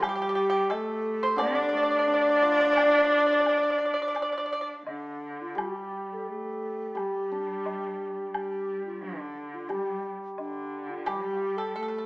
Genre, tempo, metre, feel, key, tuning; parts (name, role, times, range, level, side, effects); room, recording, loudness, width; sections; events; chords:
chinese traditional, Chinese chamber ensemble; 87 BPM; 4/4; straight; D yu mode; A4 = 439 Hz
mellow hollow alto flute; melody; 0.0-12.1 s; D4 to D5; -28 LUFS; equal
pipa; second line; 0.0-4.7, 11.1-12.1 s; G4 to D5; -30 LUFS; right 1 dB
warm cello; second line; 0.0-12.1 s; D3 to D4; -31 LUFS; right 1 dB
hammered dulcimer; accompaniment; 0.0-12.1 s; D3 to A4; -35 LUFS; equal
woodblock; percussion; 0.0-11.2 s; -34 LUFS; left 1 dB
moderate recital hall reverb, RT60 1.3 s; small speaker sound; -25 LUFS; side -23 dB against mid
0.0-5.6 A section; 5.6-12.1 B section